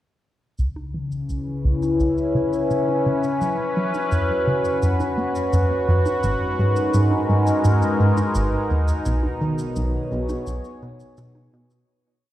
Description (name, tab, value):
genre	ambient, sequencer-driven space music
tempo	85 BPM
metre	4/4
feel	straight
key	C# dorian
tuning	A4 = 440 Hz
part	sweeping resonant pad	sustained chords	0.6-11.9 s	B2 to C#5	-22 LUFS	left 1 dB	chorus, phaser, shimmer reverb
part	plucky analog bass	riff	0.6-11.8 s	G#1 to A#3	-22 LUFS	equal	tape echo
part	shaker and bongos	percussion	0.6-11.8 s	none	-36 LUFS	right 2 dB	tape echo
room	wet plate reverb, RT60 3.2 s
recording	played on a big sound system in a bare room, cassette tape, large studio reverb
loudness	-19 LUFS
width	side -13 dB against mid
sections	0.6-11.9 A section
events	fade-in on drum 0.6-11.9; filter sweep on analog synth bass 0.6-11.9; fade-out 8.1-11.9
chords	0.6 C#m7; 3.4 F#sus4; 6.2 G#m7; 9.1 B6